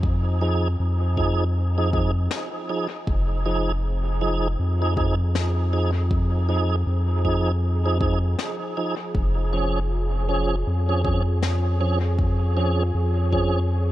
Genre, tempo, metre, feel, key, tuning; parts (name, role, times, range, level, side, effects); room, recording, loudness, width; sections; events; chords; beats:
ambient dub; 79 BPM; 4/4; swing 59% on 16ths; F minor; A4 = 444 Hz
warm analog pad; sustained chords; 0.0-13.9 s; F3 to Ab5; -36 LUFS; right 1 dB; chorus
warm sub bass; bass; 0.0-13.9 s; F1 to F2; -22 LUFS; equal; tube saturation
electronic kick drum; drums; 0.0-13.5 s; -26 LUFS; equal
tonewheel organ; stabs; 0.4-13.6 s; F3 to Ab4; -26 LUFS; right 2 dB; chorus vibrato, fast rotary speaker, dub echo
snare drum; drums; 2.3-11.6 s; -35 LUFS; left 4 dB; dub echo
little or no reverb; -20 LUFS; side -14 dB against mid
0.0-13.9 A section
fade-in on analog synth pad 0.0-13.9
0.0 Fm7; 9.1 Db/F
| 0.04 0.80 1.55 2.31 | 3.07 3.83 4.59 5.35 | 6.11 6.87 7.63 8.39 | 9.15 9.91 10.67 11.43 | 12.19 12.95 13.71